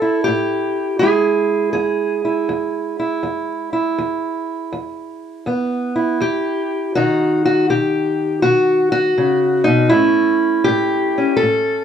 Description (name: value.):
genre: acoustic country blues, solo or duo.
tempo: 81 BPM.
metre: 4/4.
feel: swing 65% on 8ths.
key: E major.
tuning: A4 = 439 Hz.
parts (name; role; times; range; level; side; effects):
fingerpicked steel-string acoustic guitar; solo; 0.0-11.8 s; E2 to A4; -15 LUFS; equal; none.
room: moderate studio reverb, RT60 0.7 s.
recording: none.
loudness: -15 LUFS.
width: side -8 dB against mid.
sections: 0.0-11.8 A section.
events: none.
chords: 0.0 A5; 1.0 E; 7.0 B; 9.9 A.